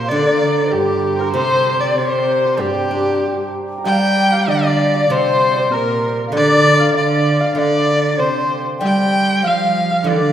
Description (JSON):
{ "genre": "chinese traditional, Chinese chamber ensemble", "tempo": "97 BPM", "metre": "2/4", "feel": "rubato", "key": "G yu mode", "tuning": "A4 = 440 Hz", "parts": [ { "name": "clear erhu", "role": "melody", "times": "0.0-10.3 s", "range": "G4 to G5", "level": "-19 LUFS", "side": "left 1 dB", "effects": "none" }, { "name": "hammered dulcimer", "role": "second line", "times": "0.0-10.3 s", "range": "F4 to Bb5", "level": "-22 LUFS", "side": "right 3 dB", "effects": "none" }, { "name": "large dizi", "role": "second line", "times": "0.0-10.3 s", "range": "G4 to G5", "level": "-20 LUFS", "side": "left 3 dB", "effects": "none" }, { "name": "rich cello", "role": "second line", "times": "0.0-10.3 s", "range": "G2 to G3", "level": "-20 LUFS", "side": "right 3 dB", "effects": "none" }, { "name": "steel-string zither", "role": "accompaniment", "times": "0.0-10.3 s", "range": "C3 to D4", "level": "-21 LUFS", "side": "left 1 dB", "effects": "none" } ], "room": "wet recital hall reverb, RT60 1.7 s", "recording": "heard from further back in the room", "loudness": "-14 LUFS", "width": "side -10 dB against mid", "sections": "0.0-3.9 A section; 3.9-10.3 B section", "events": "none", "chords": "none" }